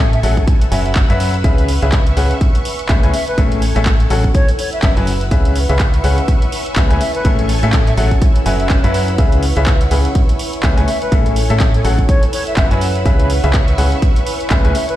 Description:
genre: piano house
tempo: 124 BPM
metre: 4/4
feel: swing 58% on 16ths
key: C# minor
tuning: A4 = 440 Hz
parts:
  - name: analog string pad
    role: sustained chords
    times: 0.0-15.0 s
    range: A4 to E6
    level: -26 LUFS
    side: right 1 dB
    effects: ensemble chorus, sidechain pumping
  - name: bright upright piano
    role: riff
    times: 0.0-14.7 s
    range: A2 to G#5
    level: -20 LUFS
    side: left 2 dB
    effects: sidechain pumping, digital delay
  - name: deep dub fingered electric bass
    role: bass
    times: 0.0-14.7 s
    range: F#1 to A2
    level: -16 LUFS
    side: equal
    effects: sidechain pumping
  - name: warbly tape-like pad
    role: texture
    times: 0.1-15.0 s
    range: E4 to G#5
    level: -26 LUFS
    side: equal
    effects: chorus, built-in reverb, sidechain pumping
  - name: hollow concert flute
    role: melody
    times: 0.1-15.0 s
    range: B4 to E5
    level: -24 LUFS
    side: equal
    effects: digital delay
  - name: punchy analog drum machine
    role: drums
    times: 0.1-15.0 s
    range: handclaps, hi-hat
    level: -24 LUFS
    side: right 1 dB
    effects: none
  - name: electronic kick drum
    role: drums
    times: 0.4-14.6 s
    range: none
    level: -13 LUFS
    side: equal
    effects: none
  - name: swell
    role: sound effects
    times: 8.4-9.2 s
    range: none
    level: -27 LUFS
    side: right 3 dB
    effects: none
room: little or no reverb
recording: played on a big sound system in a bare room, stone room reverb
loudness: -12 LUFS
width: side -14 dB against mid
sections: 0.0-15.0 A section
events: swell 8.4-9.2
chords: 0.5 F#7sus4; 1.4 C#m7; 3.1 Amaj7; 4.3 F#7sus4; 5.3 C#m7; 7.0 Amaj7; 8.2 F#7sus4; 9.2 C#m7; 10.9 Amaj7; 12.1 F#7sus4; 13.1 C#m7

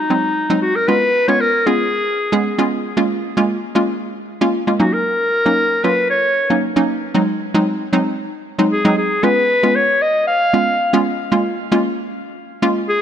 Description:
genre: pop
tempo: 115 BPM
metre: 4/4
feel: straight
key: unclear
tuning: A4 = 439 Hz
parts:
  - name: bright clarinet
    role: melody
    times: 0.0-13.0 s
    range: Eb4 to F5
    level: -17 LUFS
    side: left 1 dB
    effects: ping-pong delay
  - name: hollow square pluck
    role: accompaniment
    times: 0.1-12.8 s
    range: Gb3 to Ab4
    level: -17 LUFS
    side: right 1 dB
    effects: chorus
room: moderate lush hall reverb, RT60 2.5 s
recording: dark, warm production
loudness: -14 LUFS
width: side -9 dB against mid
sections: 0.9-9.2 A section; 9.2-13.0 B section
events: none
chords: 0.0 Ab7; 0.9 Db7; 3.0 Bbm7; 4.8 Ebm7; 7.1 Ab7; 9.2 Db7; 11.3 Bbm7

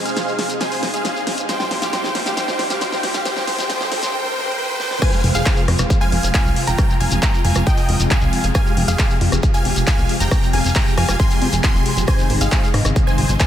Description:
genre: uplifting trance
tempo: 136 BPM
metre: 4/4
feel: straight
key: F minor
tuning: A4 = 438 Hz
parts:
  - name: analog string pad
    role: sustained chords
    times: 0.0-13.4 s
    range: Bb2 to Ab4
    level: -24 LUFS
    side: left 1 dB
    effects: ensemble chorus, sidechain pumping
  - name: riser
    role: sound effects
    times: 0.8-5.0 s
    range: none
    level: -32 LUFS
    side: equal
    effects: none
  - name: big supersaw lead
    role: melody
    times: 0.1-13.5 s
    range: G4 to C6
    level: -23 LUFS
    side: equal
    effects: phaser, sidechain pumping, ping-pong delay
  - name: big-room dance drum kit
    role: drums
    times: 0.1-13.5 s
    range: crash cymbal, handclaps, hi-hat, rim click, snare drum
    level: -24 LUFS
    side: equal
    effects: none
  - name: shekere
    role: percussion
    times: 0.1-13.5 s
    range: none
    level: -30 LUFS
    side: left 2 dB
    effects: none
  - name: wide unison pluck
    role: second line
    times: 5.0-13.5 s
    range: F5 to C6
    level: -28 LUFS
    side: equal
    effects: sidechain pumping, analog delay
  - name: electronic kick drum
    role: drums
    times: 5.0-13.5 s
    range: none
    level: -17 LUFS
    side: equal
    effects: none
  - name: plucky analog bass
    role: bass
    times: 5.2-13.4 s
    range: F1 to Ab2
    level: -19 LUFS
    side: equal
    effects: sidechain pumping
room: moderate huge ambient reverb, RT60 8.1 s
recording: dreamy mix soaked in reverb, high-pass filter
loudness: -16 LUFS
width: side -10 dB against mid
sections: 0.0-5.0 A section; 5.0-13.5 B section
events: build-up 0.0-5.0; drum fill 0.0-4.1, 4.8; riser 0.8-5.0; drop 5.0-13.5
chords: 0.0 Ab; 1.5 Eb; 5.0 Fm; 12.1 Ab

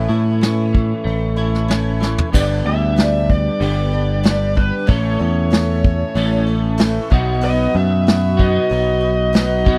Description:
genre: folk rock and heartland rock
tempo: 94 BPM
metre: 4/4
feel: straight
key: unclear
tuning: A4 = 445 Hz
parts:
  - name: picked twelve-string acoustic guitar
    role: accompaniment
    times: 0.0-9.8 s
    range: G2 to A4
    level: -28 LUFS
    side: equal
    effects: subtle chorus
  - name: mellow tonewheel organ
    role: sustained chords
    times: 0.0-9.8 s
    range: A4 to D#6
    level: -33 LUFS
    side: equal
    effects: slow rotary speaker
  - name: clean electric guitar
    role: riff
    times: 0.0-9.8 s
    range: G2 to A4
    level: -25 LUFS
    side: equal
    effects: ensemble chorus
  - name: picked electric bass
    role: bass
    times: 0.0-9.8 s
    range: G1 to A2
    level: -20 LUFS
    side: equal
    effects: none
  - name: soft brush drum kit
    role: drums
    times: 0.4-9.8 s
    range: crash cymbal, hi-hat, kick drum, snare drum, toms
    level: -18 LUFS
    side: equal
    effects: none
  - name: bluesy overdriven lead guitar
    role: melody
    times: 2.4-9.8 s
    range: B4 to E5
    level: -24 LUFS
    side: equal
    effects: distortion
room: little or no reverb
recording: dry, close 1970s-style studio recording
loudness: -17 LUFS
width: mono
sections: 0.0-2.3 A section; 2.3-9.8 B section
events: drum fill 2.0-2.3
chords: 0.0 A; 2.3 G; 4.9 A; 7.1 B

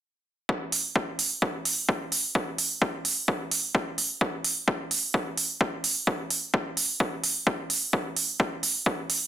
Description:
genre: EDM, festival progressive house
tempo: 129 BPM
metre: 4/4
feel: straight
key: none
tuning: none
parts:
  - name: electronic kick drum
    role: drums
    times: 0.5-9.0 s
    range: none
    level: -27 LUFS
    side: equal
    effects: overdrive, high-pass filter on kick, high-pass filter on room
  - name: electronic hi-hat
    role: drums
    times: 0.7-9.2 s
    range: none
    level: -25 LUFS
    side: right 2 dB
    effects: overdrive
room: little or no reverb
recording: dense, heavily limited modern master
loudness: -25 LUFS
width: side -11 dB against mid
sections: 0.5-9.3 A section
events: none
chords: none

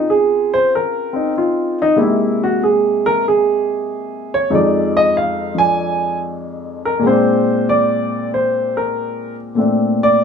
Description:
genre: solo jazz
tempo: 95 BPM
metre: 4/4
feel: swing 69% on 8ths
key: unclear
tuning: A4 = 438 Hz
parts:
  - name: warm baby grand piano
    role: solo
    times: 0.0-10.2 s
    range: F2 to Ab5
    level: -14 LUFS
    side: equal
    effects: none
room: wet small room ambience, RT60 0.5 s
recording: band playing live in one room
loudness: -14 LUFS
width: side -6 dB against mid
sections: 0.0-9.6 A section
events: grand piano solo 0.0-9.6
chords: 0.0 Dbmaj9; 2.0 C7alt; 4.5 Fm7; 7.0 Bb9; 9.6 Bbmaj9

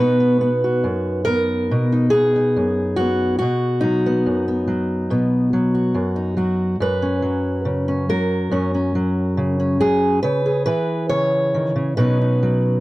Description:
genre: folk, solo fingerstyle acoustic guitar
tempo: 70 BPM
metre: 4/4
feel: rubato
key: B major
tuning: A4 = 440 Hz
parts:
  - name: fingerpicked steel-string acoustic guitar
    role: solo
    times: 0.0-12.8 s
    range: F#2 to C#5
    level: -17 LUFS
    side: equal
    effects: none
room: light reverb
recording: dry, close 1970s-style studio recording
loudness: -17 LUFS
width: side -18 dB against mid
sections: 0.0-12.8 A section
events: none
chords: 0.0 B; 6.8 F#5; 10.2 C#m; 12.0 Badd9

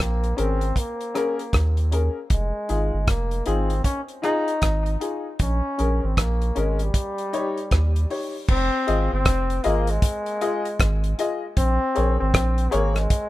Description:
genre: roots reggae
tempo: 78 BPM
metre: 4/4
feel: swing 63% on 16ths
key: F minor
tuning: A4 = 440 Hz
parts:
  - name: clear trombone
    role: melody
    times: 0.0-13.3 s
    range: G3 to Eb4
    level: -27 LUFS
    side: left 1 dB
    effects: tape echo
  - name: soft dub sub bass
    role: bass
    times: 0.0-13.1 s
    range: F1 to Eb2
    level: -22 LUFS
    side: equal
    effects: none
  - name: damped 70s drum kit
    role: drums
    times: 0.0-13.3 s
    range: crash cymbal, hi-hat, kick drum, rim click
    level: -22 LUFS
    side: equal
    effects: none
  - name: warm upright piano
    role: stabs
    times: 0.4-13.0 s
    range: Db4 to Eb5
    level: -26 LUFS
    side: left 4 dB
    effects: none
room: small room ambience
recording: rough home demo mix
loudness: -20 LUFS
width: side -16 dB against mid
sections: 0.0-8.5 A section; 8.5-13.3 B section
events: none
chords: 0.0 Bbm7; 2.3 Fm7; 5.4 Bbm7; 6.9 Eb7; 8.5 Fm7; 11.6 Bbm7

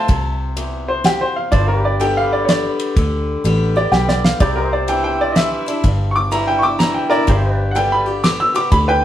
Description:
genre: honky-tonk and classic country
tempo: 125 BPM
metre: 3/4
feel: swing 65% on 8ths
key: G mixolydian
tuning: A4 = 441 Hz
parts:
  - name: clear upright piano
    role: melody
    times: 0.0-9.0 s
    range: G4 to E6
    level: -17 LUFS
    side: equal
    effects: none
  - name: picked acoustic archtop guitar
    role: accompaniment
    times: 0.0-9.0 s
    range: E2 to G4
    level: -22 LUFS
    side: left 2 dB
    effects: none
  - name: pedal steel guitar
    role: sustained chords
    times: 0.0-9.0 s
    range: F4 to E5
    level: -28 LUFS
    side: left 1 dB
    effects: none
  - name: vintage muted fingered electric bass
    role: bass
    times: 0.1-9.0 s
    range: G1 to D2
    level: -20 LUFS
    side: equal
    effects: none
  - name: damped 70s drum kit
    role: drums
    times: 0.1-8.9 s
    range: kick drum, ride cymbal, snare drum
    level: -19 LUFS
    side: equal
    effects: none
room: wet stone room reverb, RT60 0.9 s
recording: band playing live in one room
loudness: -14 LUFS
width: side -11 dB against mid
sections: 0.0-9.0 A section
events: upright piano solo 0.0-9.0; drum fill 3.9-4.4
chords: 0.0 F; 1.5 G; 4.4 Cadd9; 7.3 G

